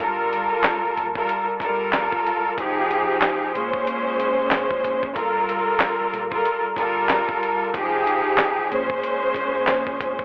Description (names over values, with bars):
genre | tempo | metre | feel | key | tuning
hip hop, boom-bap hip-hop | 93 BPM | 4/4 | swing 61% on 16ths | G minor | A4 = 441 Hz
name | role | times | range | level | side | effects
clear studio string section | accompaniment | 0.0-10.2 s | Bb2 to C5 | -20 LUFS | equal | high-pass filter, low-pass filter
deep dub fingered electric bass | bass | 0.0-10.2 s | F1 to Bb1 | -43 LUFS | equal | none
dusty soul sampler-style drum kit | drums | 0.0-10.2 s | handclaps, hi-hat, kick drum, snare drum | -24 LUFS | equal | none
room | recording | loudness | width
light reverb | telephone sound | -19 LUFS | side -28 dB against mid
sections
0.0-10.2 A section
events
none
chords
0.0 Gm9; 2.6 Fm9; 3.5 Bbm9; 5.2 Gm9; 7.7 Fm9; 8.7 Bbm9